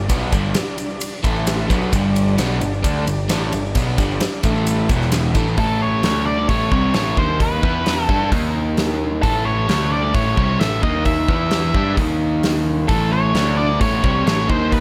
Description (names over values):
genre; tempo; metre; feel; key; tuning
classic rock; 131 BPM; 4/4; straight; unclear; A4 = 440 Hz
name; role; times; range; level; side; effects
tonewheel organ; sustained chords; 0.0-5.4, 12.9-14.8 s; G3 to E5; -35 LUFS; equal; none
crunchy overdriven guitar; riff; 0.0-14.8 s; E2 to G4; -27 LUFS; equal; spring reverb
crunchy overdriven guitar; riff; 0.0-14.8 s; E2 to G4; -26 LUFS; equal; none
growling picked electric bass; bass; 0.0-14.8 s; E1 to G2; -26 LUFS; equal; overdrive
huge arena drum kit; drums; 0.1-14.8 s; hi-hat, kick drum, ride cymbal, snare drum; -24 LUFS; equal; none
tube shaker; percussion; 0.1-5.5 s; none; -40 LUFS; equal; none
octave-fuzz lead guitar; melody; 5.6-14.8 s; A4 to E5; -24 LUFS; equal; distortion
room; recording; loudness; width
light reverb; none; -18 LUFS; mono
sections
0.0-5.6 A section; 5.6-14.8 B section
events
none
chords
0.0 G5; 1.2 A5; 1.7 G5; 4.4 A5; 4.9 E5; 5.3 A5; 6.0 D5; 6.5 A; 7.2 D#5; 7.6 E5; 8.1 G; 8.3 D#5; 9.2 A; 9.7 D5; 10.2 A; 10.8 D#5; 11.3 E5; 11.8 Em7/G; 12.0 D#5; 12.9 A; 13.4 D5; 13.8 A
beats
| 0.10 0.55 1.01 1.47 | 1.92 2.38 2.84 3.29 | 3.75 4.21 4.66 5.12 | 5.58 6.03 6.49 6.95 | 7.41 7.86 8.32 8.78 | 9.24 9.69 10.15 10.61 | 11.07 11.52 11.98 12.44 | 12.89 13.35 13.81 14.26 | 14.72